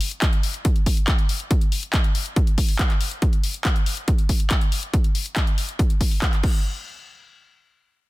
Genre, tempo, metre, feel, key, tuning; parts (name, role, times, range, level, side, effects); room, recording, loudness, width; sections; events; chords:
trance; 140 BPM; 4/4; straight
punchy analog drum machine; drums; 0.0-6.5 s; crash cymbal, handclaps, hi-hat; -27 LUFS; left 2 dB; overdrive
electronic kick drum; drums; 0.2-6.5 s; -19 LUFS; equal; overdrive
little or no reverb; dense, heavily limited modern master; -19 LUFS; side -20 dB against mid
0.0-6.6 A section; 6.6-8.1 B section